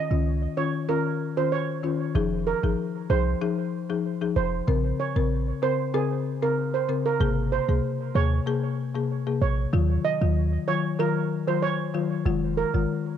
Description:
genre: dancehall.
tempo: 95 BPM.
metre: 4/4.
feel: straight.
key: F phrygian.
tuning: A4 = 439 Hz.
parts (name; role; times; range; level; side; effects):
steel pan; melody; 0.0-12.7 s; Ab4 to Eb5; -28 LUFS; right 10 dB; cassette tape, analog delay.
folk marimba with medium mallets; accompaniment; 0.1-12.9 s; C3 to Bb4; -26 LUFS; left 6 dB; cassette tape.
clean 808-style bass; bass; 0.1-12.9 s; F1 to Eb2; -24 LUFS; right 1 dB; none.
room: light reverb, small room ambience.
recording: home recording on cassette.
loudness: -23 LUFS.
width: side -9 dB against mid.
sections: 0.0-2.2 A section; 2.2-13.2 B section.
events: none.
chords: 0.0 Dbadd9; 2.2 Fm7; 4.7 Bbmadd9; 7.2 Abadd9; 9.7 Ebmadd9; 12.3 Fm7.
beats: 0.26 0.89 1.52 | 2.15 2.78 3.42 4.05 | 4.68 5.31 5.94 6.57 | 7.21 7.84 8.47 9.10 | 9.73 10.36 10.99 11.63 | 12.26 12.89.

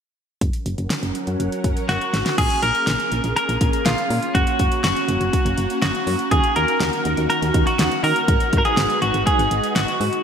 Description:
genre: synth-pop.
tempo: 122 BPM.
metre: 4/4.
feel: straight.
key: unclear.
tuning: A4 = 440 Hz.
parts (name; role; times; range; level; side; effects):
string machine, violins; sustained chords; 0.4-10.2 s; D#3 to F#5; -25 LUFS; right 1 dB; ensemble chorus, low-pass filter.
solid FM bass; bass; 0.4-10.1 s; F#1 to D#3; -24 LUFS; equal; none.
pop drum kit; drums; 0.4-10.2 s; crash cymbal, hi-hat, kick drum, snare drum; -22 LUFS; equal; gated reverb.
twelve-string electric guitar; melody; 1.9-10.2 s; E#4 to A#4; -20 LUFS; equal; lush chorus, ping-pong delay.
room: moderate lush hall reverb, RT60 2.2 s.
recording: bright 1980s-style digital production.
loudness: -17 LUFS.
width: side -7 dB against mid.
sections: 0.4-2.4 A section; 2.4-10.2 B section.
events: filter sweep on string machine 0.4-2.4; drum fill 1.9-2.4.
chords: 0.4 F#; 2.4 A#m7; 4.3 F#; 6.3 D#m7; 8.3 G#m7.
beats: | 0.41 0.91 1.40 1.89 | 2.38 2.87 3.36 3.86 | 4.35 4.84 5.33 5.82 | 6.32 6.81 7.30 7.79 | 8.28 8.77 9.27 9.76.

